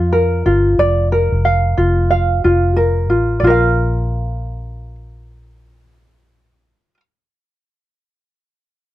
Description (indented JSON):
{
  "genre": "pop",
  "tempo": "91 BPM",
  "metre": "4/4",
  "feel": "swing 60% on 16ths",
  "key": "Bb major",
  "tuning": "A4 = 440 Hz",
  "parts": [
    { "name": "tenor ukulele", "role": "accompaniment", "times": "0.0-7.0 s", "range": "F4 to F5", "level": "-15 LUFS", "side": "equal", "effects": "none" },
    { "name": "vintage muted fingered electric bass", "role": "bass", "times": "0.0-6.7 s", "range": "F1 to F2", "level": "-17 LUFS", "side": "equal", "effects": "none" }
  ],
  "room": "light reverb",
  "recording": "dry, close 1970s-style studio recording",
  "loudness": "-13 LUFS",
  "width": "side -14 dB against mid",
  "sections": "0.0-3.4 A section; 3.4-6.1 B section",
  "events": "none",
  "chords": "0.0 Bb/F; 3.4 Bb5"
}